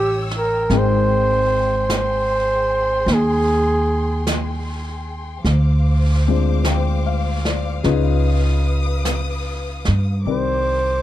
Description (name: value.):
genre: jazz ballad.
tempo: 50 BPM.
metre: 4/4.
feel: swing 68% on 8ths.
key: unclear.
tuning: A4 = 440 Hz.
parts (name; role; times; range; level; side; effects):
trumpet with bucket mute; melody; 0.0-11.0 s; G4 to C5; -19 LUFS; right 2 dB; none.
warm grand piano; accompaniment; 0.0-11.0 s; Eb3 to G5; -25 LUFS; left 13 dB; none.
warm studio string section; sustained chords; 0.0-11.0 s; Ab4 to Fb6; -30 LUFS; left 4 dB; none.
upright bass; bass; 0.0-11.0 s; Ab1 to G2; -19 LUFS; right 1 dB; none.
jazz brush drum kit; drums; 0.3-11.0 s; brushed snare drum, hi-hat, snare drum; -28 LUFS; right 2 dB; none.
room: little or no reverb.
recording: none.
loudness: -16 LUFS.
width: side -13 dB against mid.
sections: 0.0-10.3 A section.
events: muted trumpet solo 0.0-10.3.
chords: 0.0 Eb7b9; 0.7 Abmaj7; 5.5 Dm7b5; 7.8 Db9; 10.3 Cm9.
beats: | 0.71 1.90 3.08 4.27 | 5.46 6.65 7.85 9.05 | 10.26.